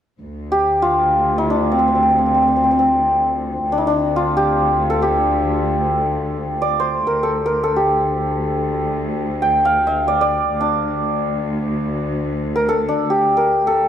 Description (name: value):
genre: persian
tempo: free time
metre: none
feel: none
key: D dastgah shur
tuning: A4 = 442 Hz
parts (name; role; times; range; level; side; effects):
- clear symphonic cello section; drone; 0.2-13.9 s; D2; -23 LUFS; equal; none
- santur; melody; 0.5-13.9 s; C4 to G5; -16 LUFS; equal; none
room: studio ambience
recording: dry, close 1970s-style studio recording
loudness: -16 LUFS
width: side -9 dB against mid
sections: 0.2-13.9 A section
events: none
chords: none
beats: free time